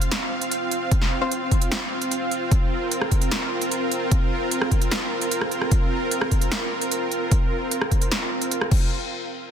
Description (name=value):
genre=heavy wobble dubstep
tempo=150 BPM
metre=4/4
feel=half-time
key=unclear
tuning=A4 = 439 Hz
part: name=supersaw pad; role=sustained chords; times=0.0-8.9 s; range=C4 to F5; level=-25 LUFS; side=right 1 dB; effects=sidechain pumping
part: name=big-room dance drum kit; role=drums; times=0.0-8.8 s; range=crash cymbal, hi-hat, rim click, snare drum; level=-27 LUFS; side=equal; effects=none
part: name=electronic kick drum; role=drums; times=0.9-8.8 s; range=none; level=-20 LUFS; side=equal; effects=none
part: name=orchestra-hit-like synth stab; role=stabs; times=1.2-1.4 s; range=C4 to C5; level=-30 LUFS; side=left 4 dB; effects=built-in reverb, ping-pong delay
room=light reverb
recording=dense, heavily limited modern master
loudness=-21 LUFS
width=side -8 dB against mid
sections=0.0-8.9 A section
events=none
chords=0.0 F5; 8.9 N.C.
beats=0.12 0.52 | 0.92 1.31 1.72 2.12 | 2.52 2.92 3.31 3.71 | 4.12 4.51 4.92 5.32 | 5.71 6.12 6.51 6.92 | 7.32 7.71 8.12 8.52